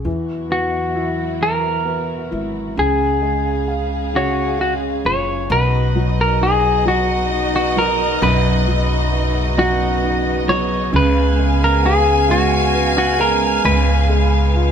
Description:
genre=six-eight pop ballad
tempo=44 BPM (dotted quarters)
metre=6/8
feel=straight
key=unclear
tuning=A4 = 440 Hz
part: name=warm upright piano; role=accompaniment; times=0.0-14.7 s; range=F#2 to E#5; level=-23 LUFS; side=right 2 dB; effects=none
part: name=warm chamber string section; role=sustained chords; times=0.0-14.7 s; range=B2 to E#5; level=-25 LUFS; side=right 1 dB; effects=none
part: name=upright bass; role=bass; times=0.0-14.7 s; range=F#1 to E2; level=-20 LUFS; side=equal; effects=none
part: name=semi-hollow electric guitar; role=melody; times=0.5-14.7 s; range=F#4 to C#5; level=-19 LUFS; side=left 1 dB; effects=none
part: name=warm studio violin section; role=second line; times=5.5-14.7 s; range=D#5 to G#5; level=-24 LUFS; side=equal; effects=none
room=moderate stone room reverb, RT60 1.1 s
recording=band playing live in one room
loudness=-15 LUFS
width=side -8 dB against mid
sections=0.0-5.5 A section; 5.5-14.7 B section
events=none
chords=0.1 Esus2; 2.8 C#; 5.5 Badd9; 10.9 C#7

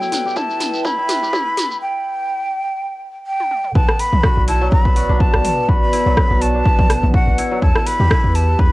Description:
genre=afro house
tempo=124 BPM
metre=4/4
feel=swing 55% on 16ths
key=E minor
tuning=A4 = 439 Hz
part: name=breathy hollow jazz flute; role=melody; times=0.0-8.7 s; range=F#5 to B5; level=-20 LUFS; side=equal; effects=cassette tape, tape echo
part: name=dark analog pad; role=sustained chords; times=0.0-8.7 s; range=B3 to G5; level=-24 LUFS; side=equal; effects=chorus, phaser, sidechain pumping, cassette tape
part: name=kora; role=arpeggios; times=0.0-8.7 s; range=F#3 to B4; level=-27 LUFS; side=equal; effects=sidechain pumping, cassette tape, tape echo
part: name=shekere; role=percussion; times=0.0-1.8 s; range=none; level=-27 LUFS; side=right 2 dB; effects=none
part: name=deep house drum kit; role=drums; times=0.1-8.5 s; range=hi-hat, rim click, toms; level=-23 LUFS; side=equal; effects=overdrive
part: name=electronic kick drum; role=drums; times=0.4-8.7 s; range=none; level=-16 LUFS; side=equal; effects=overdrive, high-pass filter on kick
part: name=warm 808-style bass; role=bass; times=3.8-8.7 s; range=B1 to E2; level=-18 LUFS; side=equal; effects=sidechain pumping
room=light reverb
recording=home recording on cassette, high-pass filter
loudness=-14 LUFS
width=side -19 dB against mid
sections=0.0-3.8 A section; 3.8-8.7 B section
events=build-up 0.0-3.8; drum fill 0.0-1.8, 3.4-3.8; filter sweep 0.0-3.8; break 1.8-3.8; drop 3.8-8.7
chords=0.0 Em; 3.8 Bm7; 7.6 Em

